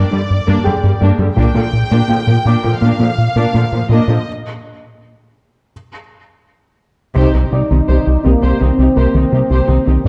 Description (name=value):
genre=cinematic, hybrid orchestral and electronic film score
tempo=83 BPM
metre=4/4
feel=straight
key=C minor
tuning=A4 = 440 Hz
part: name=warm symphonic violin section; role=melody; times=0.0-4.3 s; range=D5 to G5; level=-25 LUFS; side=equal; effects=none
part: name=warm symphonic viola section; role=accompaniment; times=0.0-9.9 s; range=D3 to C5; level=-23 LUFS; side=equal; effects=none
part: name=tight sequenced synth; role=arpeggios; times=0.0-10.1 s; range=C3 to Bb4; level=-26 LUFS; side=equal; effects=none
part: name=rubbery square bass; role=riff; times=0.0-10.1 s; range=C2 to Bb3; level=-17 LUFS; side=equal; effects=none
part: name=warm symphonic cello section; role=bass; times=0.1-10.1 s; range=G2 to C3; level=-21 LUFS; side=equal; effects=none
part: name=felt-muted upright piano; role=texture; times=0.6-10.1 s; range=Bb3 to D6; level=-28 LUFS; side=equal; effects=digital delay
part: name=taiko ensemble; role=drums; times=1.4-2.8, 7.2-8.6 s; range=none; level=-24 LUFS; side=equal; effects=none
part: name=dark French horn section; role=sustained chords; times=7.2-10.1 s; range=Bb3 to Eb4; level=-20 LUFS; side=equal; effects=none
room=moderate scoring stage reverb, RT60 1.6 s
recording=dark, warm production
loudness=-14 LUFS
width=mono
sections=0.0-7.2 A section; 7.2-10.1 B section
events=break 4.3-7.2; band accent 7.2-7.9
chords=0.0 Gm; 1.4 Bb; 4.3 N.C.; 7.2 Cm